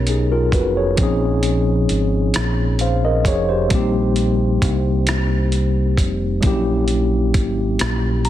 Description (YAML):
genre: slow six-eight R&B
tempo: 44 BPM (dotted quarters)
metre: 6/8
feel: straight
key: Bb dorian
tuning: A4 = 440 Hz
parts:
  - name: tine electric piano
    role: accompaniment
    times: 0.0-8.3 s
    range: F3 to Bb5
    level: -19 LUFS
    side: left 1 dB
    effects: fast stereo tremolo
  - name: deep dub fingered electric bass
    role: bass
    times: 0.0-8.3 s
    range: F1 to C2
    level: -20 LUFS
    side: equal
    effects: none
  - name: dusty soul sampler-style drum kit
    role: drums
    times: 0.1-8.3 s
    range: hi-hat, kick drum, rim click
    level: -21 LUFS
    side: equal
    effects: none
room: digital ambience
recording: heavily compressed radio sound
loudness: -16 LUFS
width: side -12 dB against mid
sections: 0.0-8.3 A section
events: tine electric piano fill 7.8-8.3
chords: 0.0 Bmaj9; 1.0 Bbm11; 3.7 Cm7/Bb; 6.4 Gb7b9